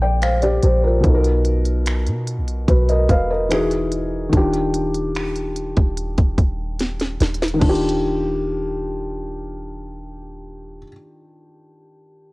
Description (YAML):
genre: contemporary R&B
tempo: 73 BPM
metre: 4/4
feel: straight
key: Eb major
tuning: A4 = 440 Hz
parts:
  - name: felt-muted upright piano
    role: accompaniment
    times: 0.0-12.3 s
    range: Bb2 to G5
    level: -21 LUFS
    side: left 1 dB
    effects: cassette tape
  - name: warm 808-style bass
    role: bass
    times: 0.0-10.8 s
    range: Eb1 to B2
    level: -21 LUFS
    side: equal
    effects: none
  - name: trap drum kit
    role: drums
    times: 0.2-8.0 s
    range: crash cymbal, finger snaps, hi-hat, kick drum, snare drum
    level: -20 LUFS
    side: equal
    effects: cassette tape
room: digital ambience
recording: home recording on cassette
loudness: -17 LUFS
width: side -22 dB against mid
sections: 0.0-7.6 A section; 7.6-10.9 B section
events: drum fill 6.8-7.6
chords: 0.0 Gm7/Bb; 1.0 Bmaj7; 3.5 Emaj9; 4.3 Ebmaj9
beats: 0.22 | 1.04 1.86 2.68 3.51 | 4.33 5.15 5.97 6.79 | 7.62 8.44 9.26 10.08